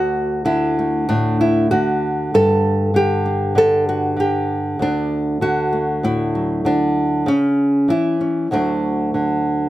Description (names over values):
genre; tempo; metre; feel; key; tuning
folk, solo fingerstyle acoustic guitar; 97 BPM; 4/4; straight; D major; A4 = 445 Hz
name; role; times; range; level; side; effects
nylon-string guitar; solo; 0.0-9.7 s; D2 to A4; -16 LUFS; equal; none
room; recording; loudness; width
light reverb; none; -16 LUFS; side -15 dB against mid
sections
0.0-9.7 A section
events
none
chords
0.0 D; 2.3 Gsus2; 4.8 D; 7.3 C#m; 8.5 D